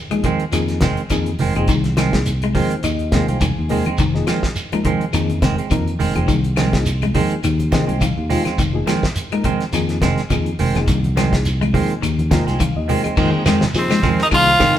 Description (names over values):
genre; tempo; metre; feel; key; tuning
afrobeat; 104 BPM; 4/4; swing 56% on 16ths; F minor; A4 = 440 Hz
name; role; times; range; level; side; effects
bright reed electric piano; accompaniment; 0.1-14.8 s; F3 to Bb5; -26 LUFS; left 4 dB; fast tremolo
clean electric guitar; arpeggios; 0.1-14.8 s; C3 to Ab3; -23 LUFS; left 4 dB; warbly pitch drift
cloth-damped thuddy drum kit; drums; 0.1-14.8 s; crash cymbal, hi-hat, kick drum, ride cymbal, snare drum; -23 LUFS; equal; none
claves; percussion; 0.1-14.5 s; none; -32 LUFS; left 8 dB; none
congas; percussion; 0.1-14.8 s; none; -25 LUFS; right 2 dB; none
semi-hollow electric guitar; stabs; 0.2-14.8 s; Eb3 to C4; -23 LUFS; right 5 dB; none
shekere; percussion; 0.2-14.8 s; none; -28 LUFS; right 2 dB; none
fingered electric bass; bass; 0.5-14.8 s; F1 to F3; -21 LUFS; equal; none
raspy tenor saxophone; melody; 13.8-14.7 s; C4 to F4; -15 LUFS; left 1 dB; none
growling trumpet; second line; 13.8-14.7 s; C5 to F5; -21 LUFS; right 3 dB; none
warm trombone section; second line; 13.8-14.7 s; C3 to F3; -29 LUFS; right 3 dB; none
room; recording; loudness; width
moderate stone room reverb, RT60 1.3 s; band playing live in one room; -15 LUFS; side -11 dB against mid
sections
0.0-13.2 A section; 13.2-14.8 B section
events
reed electric piano fill 2.3-4.0, 7.4-8.6, 12.0-13.2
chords
0.0 Fm7